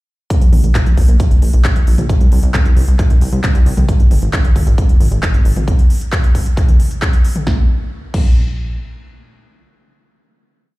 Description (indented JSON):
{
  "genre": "uplifting trance",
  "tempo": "134 BPM",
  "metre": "4/4",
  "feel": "straight",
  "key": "unclear",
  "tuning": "A4 = 441 Hz",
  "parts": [
    { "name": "big-room dance drum kit", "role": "drums", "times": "0.3-8.3 s", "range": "crash cymbal, handclaps, hi-hat, snare drum, toms", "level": "-24 LUFS", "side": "left 1 dB", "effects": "sidechain pumping on hats, sidechain pumping on toms, sidechain pumping on cymbals" },
    { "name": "electronic kick drum", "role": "drums", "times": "0.3-8.3 s", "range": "none", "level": "-12 LUFS", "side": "equal", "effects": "none" },
    { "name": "plucky analog bass", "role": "bass", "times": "0.4-8.8 s", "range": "Eb1 to C2", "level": "-14 LUFS", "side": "equal", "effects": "sidechain pumping" }
  ],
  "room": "little or no reverb",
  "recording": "played on a big sound system in a bare room, large studio reverb",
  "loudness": "-11 LUFS",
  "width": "side -20 dB against mid",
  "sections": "0.3-7.5 drop; 7.5-10.8 final note",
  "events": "drop 0.3-7.5",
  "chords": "none",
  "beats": "| 0.30 0.75 1.20 1.65 | 2.09 2.54 2.99 3.44 | 3.88 4.33 4.78 5.23 | 5.68 6.12 6.57 7.02 | 7.47 7.92 8.36"
}